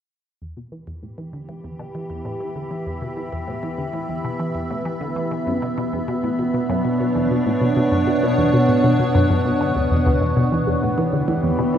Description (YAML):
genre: ambient, sequencer-driven space music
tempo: 98 BPM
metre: 4/4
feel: straight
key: E dorian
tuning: A4 = 441 Hz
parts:
  - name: evolving wavetable pad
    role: sustained chords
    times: 1.9-11.8 s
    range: B2 to B5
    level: -20 LUFS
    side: equal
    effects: chorus, built-in reverb
  - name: resonant blip pluck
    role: riff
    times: 0.4-11.8 s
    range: D2 to E3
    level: -23 LUFS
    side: equal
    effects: chorus, phaser, cassette tape, tape echo
room: wet cathedral reverb, RT60 5.8 s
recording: in a vast, echoing space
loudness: -18 LUFS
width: side -9 dB against mid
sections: 0.4-10.2 A section; 10.2-11.8 B section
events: fade-in on synth arpeggio sound 0.4-10.2; fade-in on ambient pad 0.4-10.2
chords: 0.4 Em; 5.3 Bmadd9; 10.2 Em